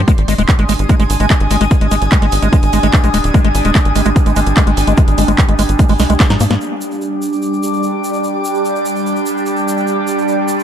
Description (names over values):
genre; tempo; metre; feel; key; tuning
psychedelic trance; 147 BPM; 4/4; straight; unclear; A4 = 441 Hz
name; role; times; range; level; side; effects
tight sequencer bass; bass; 0.0-6.6 s; Eb1 to Ab2; -15 LUFS; equal; none
airy breathy pad; texture; 0.0-10.6 s; G3 to Eb6; -20 LUFS; right 1 dB; chorus, phaser, sidechain pumping
bubbling stepped-filter texture; sustained chords; 0.4-10.6 s; G3 to D4; -20 LUFS; right 1 dB; chorus, built-in reverb, sidechain pumping
liquid acid bass; riff; 0.1-6.5 s; Ab3 to Eb4; -18 LUFS; moving between left 6 dB and right 5 dB; chorus, auto-pan, sidechain pumping, tape echo
electronic kick drum; drums; 0.1-6.3 s; none; -12 LUFS; equal; none
techno drum kit; drums; 0.1-6.6 s; handclaps, hi-hat, snare drum; -21 LUFS; right 1 dB; low-pass filter on hats, low-pass filter on snare, low-pass filter on room
egg shaker; percussion; 0.1-10.6 s; none; -31 LUFS; right 3 dB; none
room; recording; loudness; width
light reverb, digital ambience; dark, warm production; -11 LUFS; side -9 dB against mid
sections
0.0-6.6 A section; 6.6-10.6 B section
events
drum fill 6.0-6.6; band accent 6.5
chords
0.1 Ab5; 6.6 G5